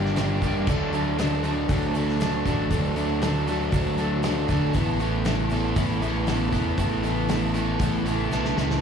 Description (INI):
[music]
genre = indie rock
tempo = 118 BPM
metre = 4/4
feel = straight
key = unclear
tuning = A4 = 440 Hz
[part]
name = crunchy overdriven guitar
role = riff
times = 0.0-8.8 s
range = E3 to E4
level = -28 LUFS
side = left 11 dB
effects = slapback echo
[part]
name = overdriven electric guitar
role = riff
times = 0.0-8.8 s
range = D3 to A4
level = -27 LUFS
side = right 8 dB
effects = analog chorus, analog delay, slapback echo
[part]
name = fuzz fingered electric bass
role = bass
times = 0.0-8.8 s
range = G1 to D3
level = -27 LUFS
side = equal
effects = overdrive
[part]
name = loose indie drum kit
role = drums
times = 0.1-8.8 s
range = crash cymbal, hi-hat, kick drum, snare drum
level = -29 LUFS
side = equal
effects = none
[part]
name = tube shaker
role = percussion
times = 0.2-8.7 s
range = none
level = -53 LUFS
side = left 6 dB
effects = none
[sound]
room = small room ambience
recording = live gig heard through the venue's PA, club reverb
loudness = -22 LUFS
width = side -7 dB against mid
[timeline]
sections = 0.0-8.8 A section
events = drum fill 8.3-8.8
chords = 0.0 Gm; 0.7 D; 4.7 Asus2